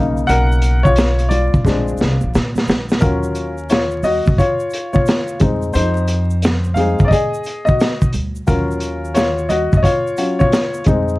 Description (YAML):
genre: hip hop, jazz-hop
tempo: 88 BPM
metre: 4/4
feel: swing 65% on 16ths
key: Eb dorian from 3.0 s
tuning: A4 = 440 Hz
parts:
  - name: warm upright piano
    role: accompaniment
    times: 0.0-11.2 s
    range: Db3 to F#5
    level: -18 LUFS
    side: left 2 dB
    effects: none
  - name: upright bass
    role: bass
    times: 0.0-11.2 s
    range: Bb1 to Bb2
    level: -19 LUFS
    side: equal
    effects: none
  - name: egg shaker and congas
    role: percussion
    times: 0.2-11.2 s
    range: none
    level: -29 LUFS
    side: right 3 dB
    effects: none
  - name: crunchy breakbeat drum kit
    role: drums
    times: 0.3-11.1 s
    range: hi-hat, kick drum, snare drum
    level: -17 LUFS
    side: equal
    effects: none
room: light reverb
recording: dark, warm production, vinyl crackle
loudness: -14 LUFS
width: side -19 dB against mid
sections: 0.0-3.0 A section; 3.0-11.2 B section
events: upright piano solo 0.0-3.0, 3.0-11.2; drum fill 1.7-3.0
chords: 0.0 Bmaj7; 1.7 Bb7; 3.0 Ebm9; 5.4 Fm7; 8.5 Ebm9